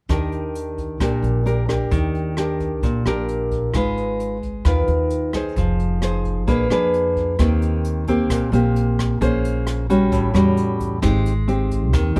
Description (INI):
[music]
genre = bossa nova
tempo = 132 BPM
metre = 4/4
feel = straight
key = Eb major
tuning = A4 = 445 Hz
[part]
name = nylon-string guitar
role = accompaniment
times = 0.1-12.2 s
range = A2 to C5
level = -22 LUFS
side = equal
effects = none
[part]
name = upright bass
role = bass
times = 0.1-12.2 s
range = F1 to F2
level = -25 LUFS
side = equal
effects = none
[part]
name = jazz brush drum kit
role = drums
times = 0.1-12.2 s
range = hi-hat, kick drum, rim click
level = -29 LUFS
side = equal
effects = none
[sound]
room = little or no reverb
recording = dark, warm production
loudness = -20 LUFS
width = mono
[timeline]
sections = 0.1-7.4 A section; 7.4-12.2 B section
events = none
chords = 0.1 Ebmaj7; 3.7 Abm6; 5.6 Fm7; 6.5 Bb7b9; 7.4 Eb6; 9.2 Bbm9; 10.1 A6; 11.0 Abmaj7